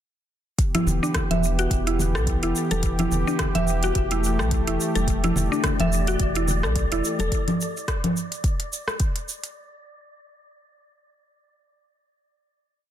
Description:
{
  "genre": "organic downtempo",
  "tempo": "107 BPM",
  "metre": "4/4",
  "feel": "swing 57% on 16ths",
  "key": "E minor",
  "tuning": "A4 = 441 Hz",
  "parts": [
    { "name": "warm analog pad", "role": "sustained chords", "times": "0.6-7.3 s", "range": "E3 to G4", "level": "-28 LUFS", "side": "equal", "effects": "chorus, sidechain pumping" },
    { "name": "electronic kick drum", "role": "drums", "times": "0.6-9.1 s", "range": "none", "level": "-25 LUFS", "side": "equal", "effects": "none" },
    { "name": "organic electronic drum kit", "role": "drums", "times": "0.6-9.5 s", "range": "congas, hi-hat, rim click, shaker", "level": "-27 LUFS", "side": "equal", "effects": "soft clipping on snare" },
    { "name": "mallet-like synth pluck", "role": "arpeggios", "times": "0.7-7.3 s", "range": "D4 to E5", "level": "-27 LUFS", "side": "equal", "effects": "chorus, cassette tape, ping-pong delay" },
    { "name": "warm sub bass", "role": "bass", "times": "0.9-7.3 s", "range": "E1 to B1", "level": "-25 LUFS", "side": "equal", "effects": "sidechain pumping" },
    { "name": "congas", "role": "percussion", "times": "0.9-7.3 s", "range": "none", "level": "-32 LUFS", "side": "left 2 dB", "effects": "none" },
    { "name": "wind-like tuned noise texture", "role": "texture", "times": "5.3-7.3 s", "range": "D5", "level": "-35 LUFS", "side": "equal", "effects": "built-in reverb" }
  ],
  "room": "light reverb, digital ambience",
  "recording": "dense, heavily limited modern master",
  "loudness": "-21 LUFS",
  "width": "side -11 dB against mid",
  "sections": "0.6-9.6 groove",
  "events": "none",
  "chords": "0.6 Em",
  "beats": "| 0.59 1.15 1.71 2.27 | 2.83 3.39 3.95 4.51 | 5.08 5.64 6.20 6.76 | 7.32 7.88 8.44 9.00"
}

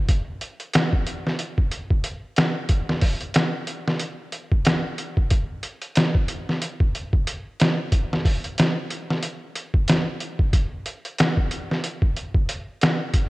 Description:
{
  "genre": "trip hop",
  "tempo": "92 BPM",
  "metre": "4/4",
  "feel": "swing 57% on 16ths",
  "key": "none",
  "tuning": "none",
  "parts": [
    { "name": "trip hop sampler-style drum kit", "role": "drums", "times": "0.1-13.3 s", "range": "hi-hat, kick drum, snare drum", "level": "-20 LUFS", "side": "equal", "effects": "none" }
  ],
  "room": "light reverb",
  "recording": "worn, warbling old tape, cassette tape, warbly pitch drift",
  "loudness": "-21 LUFS",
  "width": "side -20 dB against mid",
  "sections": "0.0-13.3 A section",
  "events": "none",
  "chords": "none",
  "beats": "| 0.10 0.75 1.40 2.05 | 2.71 3.36 4.01 4.66 | 5.31 5.97 6.62 7.27 | 7.92 8.57 9.23 9.88 | 10.53 11.18 11.84 12.49 | 13.14"
}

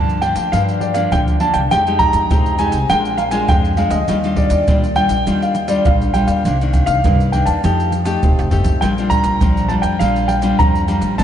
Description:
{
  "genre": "samba and choro",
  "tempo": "101 BPM",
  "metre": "4/4",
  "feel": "straight",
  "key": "unclear",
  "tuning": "A4 = 440 Hz",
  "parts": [
    { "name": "dark concert grand piano", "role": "melody", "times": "0.0-11.2 s", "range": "D5 to Bb5", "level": "-18 LUFS", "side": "right 1 dB", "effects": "analog chorus, ping-pong delay" },
    { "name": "nylon-string guitar", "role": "accompaniment", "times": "0.0-11.2 s", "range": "G2 to G4", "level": "-20 LUFS", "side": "left 2 dB", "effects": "none" },
    { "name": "upright bass", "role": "bass", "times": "0.0-11.2 s", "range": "Eb1 to G2", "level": "-21 LUFS", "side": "equal", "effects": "none" },
    { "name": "egg shaker, pandeiro, surdo and tamborim", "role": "percussion", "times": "0.1-11.2 s", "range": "none", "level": "-19 LUFS", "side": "right 1 dB", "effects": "none" }
  ],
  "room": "wet plate reverb, RT60 3.6 s",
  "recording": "dreamy mix soaked in reverb, nothing above 10.3 kHz",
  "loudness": "-13 LUFS",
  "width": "side -10 dB against mid",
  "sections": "0.0-11.2 A section",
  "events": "drum fill 8.4-8.8",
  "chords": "0.0 Gm7; 1.7 Fm9; 2.9 Bb7; 4.1 Ebmaj9; 6.5 Cm9; 7.6 F9; 8.8 Bb6",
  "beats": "0.53 1.12 | 1.72 2.31 2.90 3.50 | 4.09 4.68 5.27 5.87 | 6.46 7.05 7.64 8.23 | 8.83 9.42 10.01 10.60 | 11.19"
}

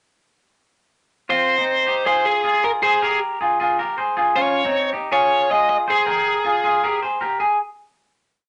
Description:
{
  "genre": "indie pop",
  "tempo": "157 BPM",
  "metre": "4/4",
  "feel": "straight",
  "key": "Ab major",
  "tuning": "A4 = 440 Hz",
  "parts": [
    { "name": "biting lead guitar", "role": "melody", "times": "1.3-7.0 s", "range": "Ab4 to Eb5", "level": "-22 LUFS", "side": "equal", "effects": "overdrive" },
    { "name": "clean electric guitar", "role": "arpeggios", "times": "1.3-7.6 s", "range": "C4 to G5", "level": "-22 LUFS", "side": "equal", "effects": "none" }
  ],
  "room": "wet club reverb, RT60 0.6 s",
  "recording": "nothing above 10.6 kHz",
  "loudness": "-19 LUFS",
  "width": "mono",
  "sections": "1.3-7.4 verse; 7.4-8.5 final note",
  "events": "none",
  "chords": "1.3 Ab6; 2.6 Fm; 4.4 Dbadd9; 5.9 Bb5; 7.4 N.C.",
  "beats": "| 1.29 1.68 2.06 2.44 | 2.83 3.21 3.59 3.97 | 4.36 4.74 5.12 5.50 | 5.88 6.26 6.64 7.02 | 7.40"
}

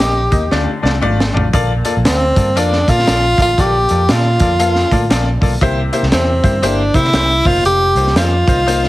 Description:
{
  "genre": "uptempo 1960s-style soul",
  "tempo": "118 BPM",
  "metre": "4/4",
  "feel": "swing 62% on 8ths",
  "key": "Bb major",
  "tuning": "A4 = 442 Hz",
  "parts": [
    { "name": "breathy tenor saxophone", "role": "melody", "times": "0.0-8.9 s", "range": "C4 to G4", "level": "-15 LUFS", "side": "equal", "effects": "none" },
    { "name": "bright upright piano", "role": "accompaniment", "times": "0.0-8.8 s", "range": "Bb2 to F5", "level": "-19 LUFS", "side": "left 3 dB", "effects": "none" },
    { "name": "vintage muted fingered electric bass", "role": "bass", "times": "0.0-8.9 s", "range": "F1 to C3", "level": "-17 LUFS", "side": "equal", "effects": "none" },
    { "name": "crunchy breakbeat drum kit", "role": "drums", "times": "0.0-8.9 s", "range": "hi-hat, kick drum, snare drum, toms", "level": "-17 LUFS", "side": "equal", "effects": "none" }
  ],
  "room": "light reverb",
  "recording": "heavily compressed radio sound, multiband compression",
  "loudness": "-11 LUFS",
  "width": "side -17 dB against mid",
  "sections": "0.0-1.5 A section; 1.5-8.9 B section",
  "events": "drum fill 0.5-1.5",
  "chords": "0.0 Eb; 0.5 Dm; 1.5 Bbmaj7; 5.6 C7; 7.4 F7sus4",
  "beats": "0.01 0.52 1.03 | 1.54 2.05 2.56 3.07 | 3.58 4.09 4.60 5.11 | 5.62 6.13 6.64 7.15 | 7.66 8.17 8.68"
}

